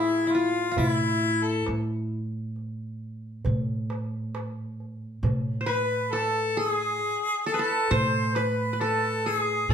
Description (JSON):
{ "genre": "Arabic maqam ensemble", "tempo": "134 BPM (eighths)", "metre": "10/8", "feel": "straight", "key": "A maqam nahawand", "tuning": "A4 = 443 Hz", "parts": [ { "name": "qanun", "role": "melody", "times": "0.0-9.7 s", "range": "E4 to C5", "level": "-27 LUFS", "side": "equal", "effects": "none" }, { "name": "clear harmonica", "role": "second line", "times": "0.0-9.7 s", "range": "E4 to C5", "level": "-27 LUFS", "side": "left 2 dB", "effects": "none" }, { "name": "upright bass", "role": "bass", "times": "0.0-9.7 s", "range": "A2", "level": "-30 LUFS", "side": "right 1 dB", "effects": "none" }, { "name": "darbuka", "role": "percussion", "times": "0.3-9.7 s", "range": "none", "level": "-31 LUFS", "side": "equal", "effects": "none" } ], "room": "wet large studio reverb, RT60 0.9 s", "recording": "band playing live in one room", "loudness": "-24 LUFS", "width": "side -8 dB against mid", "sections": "0.0-9.7 A section", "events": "none", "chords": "none", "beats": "0.33 | 0.78 1.22 1.67 2.11 2.56 3.00 3.45 3.90 4.34 4.79 | 5.23 5.68 6.13 6.57 7.02 7.46 7.91 8.36 8.80 9.25 | 9.70" }